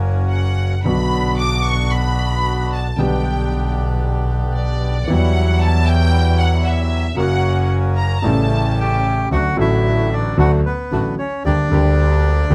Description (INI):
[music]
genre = tango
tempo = 113 BPM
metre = 4/4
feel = rubato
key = B minor, D major from 9.3 s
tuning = A4 = 441 Hz
[part]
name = warm concert grand piano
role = accompaniment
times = 0.0-12.5 s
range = A1 to G4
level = -23 LUFS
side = equal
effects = none
[part]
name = bandoneon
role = stabs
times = 0.0-12.5 s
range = F#3 to G4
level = -29 LUFS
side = equal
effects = none
[part]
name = clear double bass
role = bass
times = 0.0-12.5 s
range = F#1 to E2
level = -20 LUFS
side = equal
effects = none
[part]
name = rich studio violin section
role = second line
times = 0.3-9.0 s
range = D5 to D6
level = -26 LUFS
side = equal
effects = none
[part]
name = bandoneon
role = melody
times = 8.8-12.5 s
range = B3 to G5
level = -24 LUFS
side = equal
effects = none
[sound]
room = light reverb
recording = close, detailed microphones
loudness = -17 LUFS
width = mono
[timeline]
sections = 0.0-9.3 A section; 9.3-12.5 B section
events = violin section solo 0.0-9.3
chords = 0.0 F#; 0.9 Bm; 3.0 G/B; 5.1 Emadd9; 7.2 F#; 8.2 A7; 9.3 D; 11.4 Gm/D